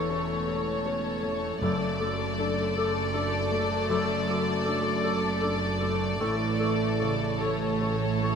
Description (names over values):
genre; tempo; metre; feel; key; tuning
cinematic; 49-53 BPM (dotted quarters); 6/8; rubato; unclear; A4 = 440 Hz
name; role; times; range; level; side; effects
warm symphonic violin section; melody; 0.0-8.4 s; C#5 to D5; -32 LUFS; left 2 dB; none
dark clarinet; second line; 0.0-8.4 s; A4; -36 LUFS; left 2 dB; none
small flute group; second line; 0.0-8.3 s; C#6 to D6; -39 LUFS; equal; none
warm chamber violin section; second line; 0.0-8.4 s; A4; -36 LUFS; left 5 dB; none
felt-muted upright piano; accompaniment; 0.0-8.4 s; E2 to A4; -34 LUFS; left 4 dB; none
warm studio viola section; accompaniment; 0.0-8.4 s; A3; -36 LUFS; right 3 dB; none
concert harp; arpeggios; 0.0-8.4 s; E2 to A5; -35 LUFS; left 3 dB; none
rich symphonic double bass section; bass; 0.0-8.4 s; E1 to A1; -34 LUFS; right 5 dB; none
warm symphonic cello section; bass; 0.0-8.4 s; E2 to A2; -33 LUFS; right 6 dB; none
timpani; percussion; 1.6-2.7 s; F#2; -37 LUFS; left 1 dB; none
room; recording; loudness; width
moderate scoring stage reverb, RT60 1.6 s; none; -25 LUFS; side -6 dB against mid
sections
0.0-8.4 A section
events
none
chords
0.0 A/E; 1.6 D/F#; 6.2 A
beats
0.48 | 1.62 2.76 | 3.90 5.05 | 6.22 7.42